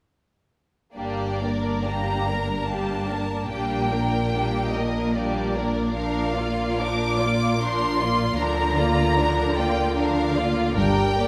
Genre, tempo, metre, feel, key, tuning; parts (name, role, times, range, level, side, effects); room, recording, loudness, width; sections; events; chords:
classical, slow romantic movement for string orchestra; 66-78 BPM; 3/4; rubato; G minor; A4 = 439 Hz
rich studio double bass section; bass; 0.9-11.3 s; G1 to D2; -31 LUFS; equal
rich studio violin section; melody; 1.0-11.3 s; D5 to D6; -30 LUFS; equal
warm symphonic violin section; second line; 1.0-11.3 s; Bb3 to D5; -30 LUFS; equal
warm studio viola section; accompaniment; 1.0-11.3 s; F3 to F4; -29 LUFS; equal
rich studio cello section; bass; 1.0-11.3 s; G2 to D3; -32 LUFS; equal
wet recital hall reverb, RT60 1.7 s; -23 LUFS; mono
1.0-11.3 A section
1.0 Gm; 3.5 Gm/Bb; 6.0 Bb; 8.4 Bb/D; 10.8 Gm